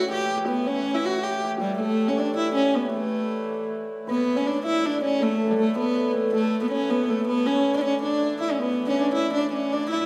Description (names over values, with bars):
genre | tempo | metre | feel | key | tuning
medieval dance | 106 BPM (dotted quarters) | 6/8 | straight | A mixolydian | A4 = 440 Hz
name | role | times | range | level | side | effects
clear viola da gamba | melody | 0.0-10.1 s | G3 to G4 | -26 LUFS | equal | slapback echo
hammered dulcimer | second line | 0.0-10.1 s | G4 to G5 | -31 LUFS | equal | none
rich hurdy-gurdy | drone | 0.0-10.1 s | A2 to E3 | -37 LUFS | equal | none
room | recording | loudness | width
wet recital hall reverb, RT60 1.3 s | none | -24 LUFS | mono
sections
0.0-4.1 A section; 4.1-10.1 B section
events
none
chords
none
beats
0.10 | 0.67 1.23 | 1.80 2.37 | 2.94 3.50 | 4.07 4.63 | 5.20 5.77 | 6.33 6.90 | 7.46 8.03 | 8.60 9.16 | 9.72